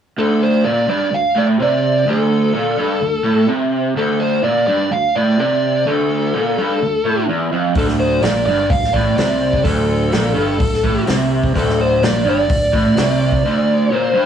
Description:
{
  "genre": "garage rock duo or trio",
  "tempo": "127 BPM",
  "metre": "4/4",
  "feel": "straight",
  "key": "D minor",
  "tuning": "A4 = 440 Hz",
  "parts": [
    { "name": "fuzz lead guitar", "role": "melody", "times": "0.2-14.3 s", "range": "A4 to F5", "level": "-18 LUFS", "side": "equal", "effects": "distortion, cassette tape" },
    { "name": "raw garage guitar", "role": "riff", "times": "0.2-14.3 s", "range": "D2 to C3", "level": "-17 LUFS", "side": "right 1 dB", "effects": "overdrive, cassette tape" },
    { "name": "growling fingered electric bass", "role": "bass", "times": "7.8-13.4 s", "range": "D1 to C2", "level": "-21 LUFS", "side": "right 1 dB", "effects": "overdrive" },
    { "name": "vintage drum kit", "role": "drums", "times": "7.8-13.4 s", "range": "hi-hat, kick drum, snare drum", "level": "-20 LUFS", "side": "equal", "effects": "cassette tape" }
  ],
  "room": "moderate booth ambience, RT60 0.2 s",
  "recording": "home recording on cassette, studio ambience",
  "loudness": "-14 LUFS",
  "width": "side -8 dB against mid",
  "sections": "0.2-14.3 A section",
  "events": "none",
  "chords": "0.2 D5"
}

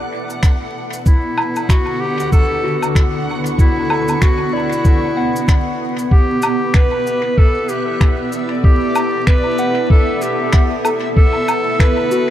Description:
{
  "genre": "ambient dub",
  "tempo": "95 BPM",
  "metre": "4/4",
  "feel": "swing 59% on 16ths",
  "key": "E dorian",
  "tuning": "A4 = 441 Hz",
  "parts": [
    { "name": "granular cloud pad", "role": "sustained chords", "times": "0.0-12.3 s", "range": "D3 to C#6", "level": "-21 LUFS", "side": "equal", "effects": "built-in reverb" },
    { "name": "soft synth bell", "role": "arpeggios", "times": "0.0-12.3 s", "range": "F#4 to F#5", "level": "-26 LUFS", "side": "left 2 dB", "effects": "chorus, tape echo" },
    { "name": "backwards swelling texture", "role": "texture", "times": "0.0-12.3 s", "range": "E5 to F#5", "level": "-30 LUFS", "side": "equal", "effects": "built-in reverb" },
    { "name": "cabasa, finger snaps and woodblock", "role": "drums", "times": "0.3-12.3 s", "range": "none", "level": "-25 LUFS", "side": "equal", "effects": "dub echo" },
    { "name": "electronic kick drum", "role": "drums", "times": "0.4-11.9 s", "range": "none", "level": "-11 LUFS", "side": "equal", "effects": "none" },
    { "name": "clear clarinet", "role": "melody", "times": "1.1-12.3 s", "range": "E4 to B4", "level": "-20 LUFS", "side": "left 1 dB", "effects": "dub echo" }
  ],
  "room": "light reverb, studio ambience",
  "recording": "vinyl crackle",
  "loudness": "-13 LUFS",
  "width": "side -12 dB against mid",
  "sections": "0.0-6.1 A section; 6.1-12.3 B section",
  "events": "filter sweep on synth bell 0.0-6.1",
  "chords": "0.0 Em7; 1.1 Dmaj9; 6.1 Em7; 11.2 Dmaj9"
}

